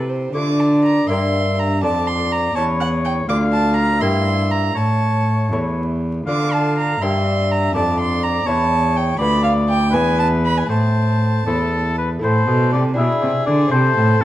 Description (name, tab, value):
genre	classical, baroque-style sonata movement with continuo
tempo	81 BPM (dotted quarters)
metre	6/8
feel	straight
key	D minor, A minor from 9.2 s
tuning	A4 = 439 Hz
part	warm oboe	melody	0.0-14.2 s	A4 to F5	-23 LUFS	left 4 dB	none
part	warm violin	second line	0.0-14.2 s	G#4 to D6	-22 LUFS	right 4 dB	none
part	lute	accompaniment	0.0-14.2 s	D2 to E5	-23 LUFS	equal	none
part	rich cello	bass	0.0-14.2 s	D2 to D3	-19 LUFS	equal	none
room	moderate recital hall reverb, RT60 1.5 s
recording	close, detailed microphones, vinyl crackle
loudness	-15 LUFS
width	side -14 dB against mid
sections	0.3-12.2 A section; 12.2-14.2 B section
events	none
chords	0.3 Dm; 1.1 Gm; 1.8 Dm/F; 2.6 E5; 3.3 Dm; 4.0 Edim/G; 4.8 A; 6.3 Dm; 7.0 Gm; 7.7 Dm/F; 8.5 A7/E; 9.2 Bdim/D; 9.9 E5; 10.7 Am; 13.0 E7/B; 13.7 Am